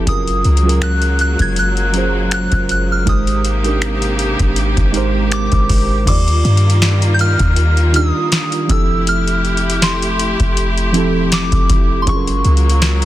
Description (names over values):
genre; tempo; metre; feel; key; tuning
contemporary R&B; 80 BPM; 4/4; swing 54% on 16ths; Eb major; A4 = 440 Hz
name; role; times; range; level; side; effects
muted felt-like synth keys; accompaniment; 0.0-13.1 s; Eb3 to D5; -20 LUFS; right 3 dB; chorus
clear studio string section; sustained chords; 0.0-13.1 s; C3 to G4; -22 LUFS; left 1 dB; sidechain pumping
clean 808-style bass; bass; 0.0-13.1 s; E1 to G2; -16 LUFS; equal; none
soft synth bell; melody; 0.1-13.1 s; C6 to Ab6; -21 LUFS; equal; chorus, digital delay
booming analog drum machine; drums; 0.1-13.1 s; crash cymbal, finger snaps, hi-hat, kick drum, snare drum; -18 LUFS; equal; vintage 12-bit sampler grit, soft clipping on snare
room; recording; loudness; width
little or no reverb; dense, heavily limited modern master; -12 LUFS; side -14 dB against mid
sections
0.0-6.1 A section; 6.1-13.1 B section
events
none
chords
0.1 Gbmaj9; 3.1 Abmaj9; 6.1 Ebmaj9; 8.7 Fmaj9; 12.1 Gbmaj9